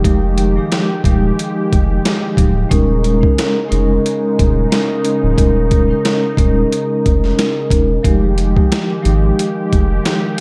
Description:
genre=hip hop, boom-bap hip-hop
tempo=90 BPM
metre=4/4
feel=swing 54% on 16ths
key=F minor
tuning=A4 = 439 Hz
part: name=vibraphone with soft mallets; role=accompaniment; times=0.0-10.4 s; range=F3 to Bb4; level=-19 LUFS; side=equal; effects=cassette tape, high-pass filter, low-pass filter
part: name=warm analog pad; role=sustained chords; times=0.0-10.4 s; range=Db3 to G4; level=-26 LUFS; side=equal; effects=chorus, high-pass filter, low-pass filter
part: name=soft dub sub bass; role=bass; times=0.0-10.0 s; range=D1 to Ab1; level=-18 LUFS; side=equal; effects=none
part: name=boom bap sampler-style drum kit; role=drums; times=0.0-10.4 s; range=hi-hat, kick drum, snare drum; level=-18 LUFS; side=equal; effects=vintage 12-bit sampler grit
room=moderate plate reverb, RT60 2.1 s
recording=dreamy mix soaked in reverb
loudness=-15 LUFS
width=mono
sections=0.0-10.4 A section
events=none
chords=0.0 Fm9; 2.7 Eb7sus4; 8.0 Fm9

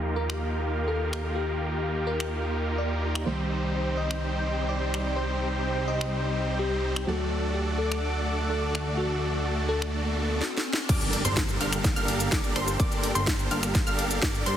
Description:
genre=EDM, festival progressive house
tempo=126 BPM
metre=4/4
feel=straight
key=G minor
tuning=A4 = 440 Hz
part: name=bell-like FM electric piano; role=melody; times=0.0-10.6 s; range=F#4 to Eb5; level=-33 LUFS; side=left 2 dB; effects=chorus, phaser, cassette tape, ping-pong delay
part: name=felt-muted upright piano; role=accompaniment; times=0.0-10.4 s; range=Eb3 to A4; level=-36 LUFS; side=right 2 dB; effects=sidechain pumping, ping-pong delay
part: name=lush unison pad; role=sustained chords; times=0.0-14.6 s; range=Bb3 to D6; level=-37 LUFS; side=equal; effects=chorus, vintage 12-bit sampler grit, sidechain pumping
part: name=supersaw chords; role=riff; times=0.0-14.6 s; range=G3 to F5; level=-31 LUFS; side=right 1 dB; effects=sidechain pumping, low-pass filter, ping-pong delay
part: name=fat analog bass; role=bass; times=0.0-14.6 s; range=G1 to G2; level=-31 LUFS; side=equal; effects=sidechain pumping
part: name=house drum kit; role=drums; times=0.3-14.6 s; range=cabasa, crash cymbal, finger snaps, hi-hat, ride cymbal, snare drum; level=-32 LUFS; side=left 1 dB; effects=overdrive, small room ambience
part: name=riser and impact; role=sound effects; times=9.4-12.8 s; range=none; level=-37 LUFS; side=right 1 dB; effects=none
part: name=wide unison pluck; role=arpeggios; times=10.9-14.6 s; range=C6 to F6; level=-33 LUFS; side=equal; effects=sidechain pumping, ping-pong delay
part: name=electronic kick drum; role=drums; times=10.9-14.3 s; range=none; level=-27 LUFS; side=equal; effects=overdrive, small room ambience
room=light reverb, digital ambience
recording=heavily compressed radio sound, multiband compression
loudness=-25 LUFS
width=side -10 dB against mid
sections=0.0-10.9 A section; 10.9-14.6 B section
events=drum fill 10.4-10.9; drop 10.9-14.6; impact 10.9-12.8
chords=0.0 Ebadd9; 3.3 Cm; 7.1 D; 10.9 Gmadd9

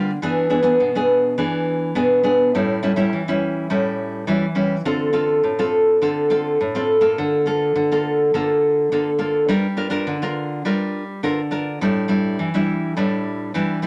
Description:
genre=samba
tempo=104 BPM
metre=4/4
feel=straight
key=unclear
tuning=A4 = 440 Hz
part: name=nylon-string guitar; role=solo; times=0.0-13.9 s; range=A2 to Bb4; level=-20 LUFS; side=equal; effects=none
room=wet studio reverb, RT60 0.6 s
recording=none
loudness=-20 LUFS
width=mono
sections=0.0-13.9 A section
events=none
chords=0.2 E7; 2.5 A7; 4.9 Dm7; 7.2 Bbmaj7/D; 9.5 Gm7; 11.8 A7sus4

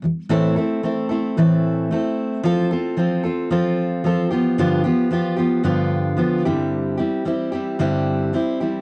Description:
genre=pop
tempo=112 BPM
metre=4/4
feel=straight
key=unclear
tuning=A4 = 440 Hz
part: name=fingerpicked steel-string acoustic guitar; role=solo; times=0.0-8.8 s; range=G2 to A4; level=-20 LUFS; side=equal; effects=none
room=wet booth ambience, RT60 0.2 s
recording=home recording on cassette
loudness=-20 LUFS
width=mono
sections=0.3-8.8 A section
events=none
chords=0.3 Am; 2.4 F; 4.3 G7; 6.5 Cadd9/G

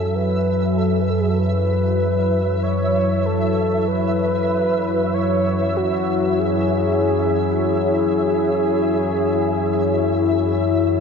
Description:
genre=dark ambient drone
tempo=48 BPM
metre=4/4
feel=straight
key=unclear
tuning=A4 = 442 Hz
part: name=mellow horn-like synth lead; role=melody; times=0.0-11.0 s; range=F#4 to C#5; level=-22 LUFS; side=equal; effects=chorus, analog delay
part: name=deep dark ambient pad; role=sustained chords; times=0.0-11.0 s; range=F#3 to G#5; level=-22 LUFS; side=left 3 dB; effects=chorus, built-in reverb
part: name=analog drone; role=drone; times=0.0-11.0 s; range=F#2 to F#3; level=-22 LUFS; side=equal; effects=chorus
part: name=flickering grainy texture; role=texture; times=0.0-11.0 s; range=E5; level=-29 LUFS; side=right 2 dB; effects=built-in reverb, ensemble chorus
room=wet huge ambient reverb, RT60 9.1 s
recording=dreamy mix soaked in reverb, nothing above 10.5 kHz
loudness=-17 LUFS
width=side -6 dB against mid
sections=0.0-11.0 A section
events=filter sweep on synth drone 0.0-11.0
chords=0.0 E/F#

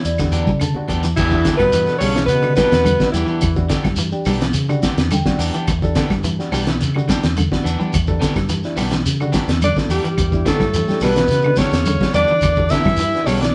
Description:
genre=afrobeat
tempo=107 BPM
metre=4/4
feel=straight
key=E dorian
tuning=A4 = 440 Hz
part: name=breathy alto saxophone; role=melody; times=0.0-3.7, 9.6-13.5 s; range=E4 to E5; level=-21 LUFS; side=equal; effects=none
part: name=overdriven reed electric piano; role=accompaniment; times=0.0-13.3 s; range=G3 to A5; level=-31 LUFS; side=equal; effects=none
part: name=electric guitar at the edge of break-up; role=arpeggios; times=0.0-13.5 s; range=D3 to G3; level=-27 LUFS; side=equal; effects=none
part: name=fingered electric bass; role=bass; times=0.0-13.5 s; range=B1 to C#3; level=-24 LUFS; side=equal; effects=none
part: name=cloth-damped thuddy drum kit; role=drums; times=0.0-13.5 s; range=crash cymbal, hi-hat, kick drum, snare drum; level=-23 LUFS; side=equal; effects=none
part: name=congas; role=percussion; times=0.0-13.4 s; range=none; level=-27 LUFS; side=equal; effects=none
part: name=shekere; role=percussion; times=0.0-13.5 s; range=none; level=-31 LUFS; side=equal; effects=none
part: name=claves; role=percussion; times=0.2-13.4 s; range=none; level=-38 LUFS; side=equal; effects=none
part: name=electric guitar at the edge of break-up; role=stabs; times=0.3-13.4 s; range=E3 to G4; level=-30 LUFS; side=equal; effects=none
part: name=breathy bass trombone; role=second line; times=1.2-3.7, 9.6-13.5 s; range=E2 to E3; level=-30 LUFS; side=equal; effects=none
part: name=bright tenor saxophone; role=second line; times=1.2-3.7, 9.7-13.5 s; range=E3 to E4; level=-30 LUFS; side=equal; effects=none
room=moderate studio reverb, RT60 0.7 s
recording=band playing live in one room, nothing above 10.7 kHz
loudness=-17 LUFS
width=mono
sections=0.0-1.2 A section; 1.2-13.5 B section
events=reed electric piano fill 0.0-1.2, 4.8-5.7; drum fill 0.5-1.2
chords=0.0 Em7

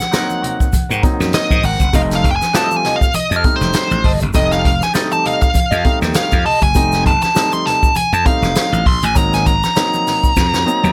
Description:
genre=funk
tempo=100 BPM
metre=4/4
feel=swing 56% on 16ths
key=F mixolydian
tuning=A4 = 440 Hz
part: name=nasal lead guitar with a parked wah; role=melody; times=0.0-10.9 s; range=C5 to C6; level=-19 LUFS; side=equal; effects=overdrive
part: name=clean electric guitar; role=accompaniment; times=0.0-6.7 s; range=C4 to Eb5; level=-26 LUFS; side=equal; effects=wah
part: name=vintage drum kit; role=drums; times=0.0-10.9 s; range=hi-hat, kick drum, snare drum, toms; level=-19 LUFS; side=equal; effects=none
part: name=egg shaker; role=percussion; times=0.0-10.9 s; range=none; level=-35 LUFS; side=equal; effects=none
part: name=warm upright piano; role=stabs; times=0.1-10.9 s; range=Gb3 to F4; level=-24 LUFS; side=equal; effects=none
part: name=congas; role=percussion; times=0.1-10.9 s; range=none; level=-30 LUFS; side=equal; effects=none
part: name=slap bass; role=bass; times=0.7-10.9 s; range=F1 to Ab2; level=-20 LUFS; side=equal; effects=none
room=little or no reverb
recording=none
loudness=-15 LUFS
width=mono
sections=0.0-10.9 A section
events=lead electric guitar solo 0.0-10.9; drum fill 10.4-10.9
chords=0.0 Ab9; 1.9 F9; 9.2 Ab9

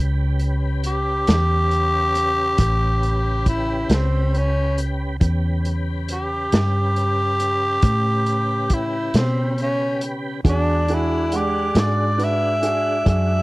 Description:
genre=slow blues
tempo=46 BPM (dotted quarters)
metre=12/8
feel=straight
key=A mixolydian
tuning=A4 = 440 Hz
part: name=tonewheel organ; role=sustained chords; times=0.0-13.4 s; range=C#3 to F#5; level=-30 LUFS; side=equal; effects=slow rotary speaker, chorus vibrato
part: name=vintage muted fingered electric bass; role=bass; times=0.0-13.4 s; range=A1 to B2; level=-21 LUFS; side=equal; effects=none
part: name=vintage drum kit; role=drums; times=0.4-13.3 s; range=hi-hat, kick drum, snare drum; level=-20 LUFS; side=equal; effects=none
part: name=growling tenor saxophone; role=melody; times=0.9-13.4 s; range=C4 to E5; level=-21 LUFS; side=equal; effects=none
part: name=warm upright piano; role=accompaniment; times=10.4-13.4 s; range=G#3 to F#5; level=-25 LUFS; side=right 3 dB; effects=none
room=small room ambience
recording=dry, close 1970s-style studio recording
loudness=-18 LUFS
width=side -21 dB against mid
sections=0.0-13.4 A section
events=none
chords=0.0 A9; 10.4 E9

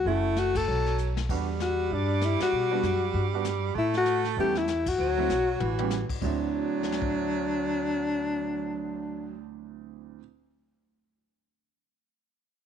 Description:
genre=jazz, small-group swing and bop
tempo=195 BPM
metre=4/4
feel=swing 60% on 8ths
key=D mixolydian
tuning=A4 = 440 Hz
part: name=mellow alto saxophone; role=melody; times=0.0-9.4 s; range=D4 to A4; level=-28 LUFS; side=left 4 dB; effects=none
part: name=upright bass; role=bass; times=0.0-10.1 s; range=F#1 to B2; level=-32 LUFS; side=equal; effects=none
part: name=breathy baritone saxophone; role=second line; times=0.1-9.4 s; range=E3 to A3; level=-32 LUFS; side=right 12 dB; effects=none
part: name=clear concert grand piano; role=accompaniment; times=0.1-10.2 s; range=D2 to G4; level=-35 LUFS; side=right 14 dB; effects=none
part: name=vintage brush drum kit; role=drums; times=0.1-7.1 s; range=brushed snare drum, crash cymbal, hi-hat, kick drum, ride cymbal, snare drum, toms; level=-38 LUFS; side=left 4 dB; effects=none
room=light reverb, small room ambience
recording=1960s-style stereo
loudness=-25 LUFS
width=side -8 dB against mid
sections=0.0-6.2 A section; 6.2-8.7 B section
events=band accent 0.5, 2.4, 4.8; drum fill 1.0-1.3, 5.6-5.9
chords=0.1 F#m7; 0.7 B5; 1.3 Em7; 3.8 A9; 5.0 D9; 5.6 A9; 6.2 D9

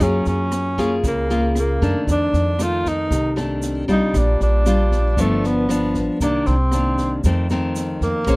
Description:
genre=bossa nova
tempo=116 BPM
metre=4/4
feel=straight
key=unclear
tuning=A4 = 438 Hz
part: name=breathy tenor saxophone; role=melody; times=0.0-8.4 s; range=A3 to F4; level=-22 LUFS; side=equal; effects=none
part: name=nylon-string guitar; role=accompaniment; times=0.0-8.4 s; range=F2 to C5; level=-21 LUFS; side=left 1 dB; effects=none
part: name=upright bass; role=bass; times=0.0-8.4 s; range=G1 to Gb2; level=-21 LUFS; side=equal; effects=none
part: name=open jazz drum kit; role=drums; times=0.0-8.4 s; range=kick drum, rim click, snare drum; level=-27 LUFS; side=right 1 dB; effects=none
part: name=tube shaker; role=percussion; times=0.0-8.4 s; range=none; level=-38 LUFS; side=right 6 dB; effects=none
room=little or no reverb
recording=dry, close 1970s-style studio recording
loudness=-17 LUFS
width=side -25 dB against mid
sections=0.0-8.4 A section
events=none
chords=0.0 Gbmaj9; 2.1 F13; 4.1 Bb6; 5.2 G7; 6.2 Cm9; 7.2 F7

